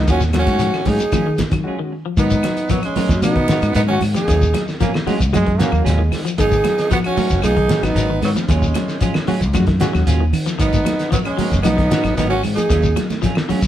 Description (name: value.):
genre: afrobeat.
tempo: 114 BPM.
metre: 4/4.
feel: straight.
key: G# dorian.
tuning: A4 = 440 Hz.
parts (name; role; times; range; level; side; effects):
trombone with bucket mute; melody; 0.0-13.1 s; B3 to G#4; -21 LUFS; equal; none.
raspy tenor saxophone; second line; 0.0-13.0 s; F#3 to D#4; -25 LUFS; right 5 dB; none.
semi-hollow electric guitar; arpeggios; 0.0-13.7 s; D#3 to F#3; -25 LUFS; left 5 dB; none.
fingered electric bass; bass; 0.0-13.7 s; F#1 to D#3; -19 LUFS; equal; none.
clean electric guitar; stabs; 0.1-13.7 s; F#3 to A#4; -28 LUFS; right 6 dB; none.
cloth-damped thuddy drum kit; drums; 0.1-13.7 s; hi-hat, kick drum, snare drum; -22 LUFS; equal; none.
shekere; percussion; 0.1-13.7 s; none; -26 LUFS; left 4 dB; none.
overdriven reed electric piano; accompaniment; 0.3-13.6 s; G#3 to F#4; -28 LUFS; left 2 dB; fast tremolo.
claves; percussion; 0.3-13.5 s; none; -34 LUFS; left 4 dB; none.
congas; percussion; 0.3-13.6 s; none; -26 LUFS; right 7 dB; none.
warm bass trombone; second line; 4.8-6.3 s; G#3 to A#3; -23 LUFS; right 4 dB; none.
room: light reverb.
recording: band playing live in one room.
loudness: -15 LUFS.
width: side -11 dB against mid.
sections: 0.0-2.2 A section; 2.2-13.7 B section.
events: break 1.7-2.2.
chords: 0.1 D#m11; 2.2 G#m9; 4.3 D#m11; 6.4 G#m9; 8.5 D#m11; 10.6 G#m9; 12.7 D#m11.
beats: | 0.08 0.61 1.13 1.66 | 2.18 2.71 3.23 3.76 | 4.28 4.81 5.33 5.86 | 6.38 6.91 7.44 7.96 | 8.49 9.02 9.54 10.07 | 10.60 11.12 11.65 12.18 | 12.70 13.23.